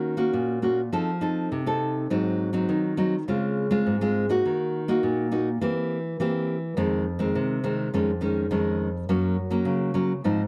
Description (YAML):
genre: samba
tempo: 103 BPM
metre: 4/4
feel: straight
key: Db major from 3.3 s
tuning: A4 = 440 Hz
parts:
  - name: nylon-string guitar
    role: solo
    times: 0.0-10.5 s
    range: F2 to A4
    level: -25 LUFS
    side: equal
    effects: none
room: studio reverb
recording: dry, close 1970s-style studio recording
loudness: -25 LUFS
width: mono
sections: 0.0-3.3 A section; 3.3-10.5 B section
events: none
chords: 0.0 Ebm7; 0.9 F7; 2.1 Ab7; 3.3 Dbmaj7; 4.4 Ebm; 5.6 C7/E; 6.8 Fm7; 7.9 Dbadd9/F; 9.1 Gb